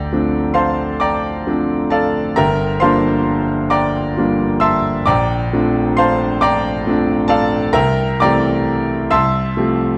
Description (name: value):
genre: classical, impressionist solo piano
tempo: 44 BPM (dotted quarters)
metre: 6/8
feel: rubato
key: unclear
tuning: A4 = 440 Hz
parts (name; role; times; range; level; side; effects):
- clear grand piano; solo; 0.0-10.0 s; G1 to E6; -16 LUFS; equal; none
room: moderate recital hall reverb, RT60 1.5 s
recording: dark, warm production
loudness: -16 LUFS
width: mono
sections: 0.0-10.0 A section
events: none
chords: 0.0 Dm7; 2.4 Gm7; 5.1 Bbmaj9; 7.8 C13; 9.1 Fmaj9/C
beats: 1.02 | 2.38 3.73 | 5.07 6.42 | 7.75 9.11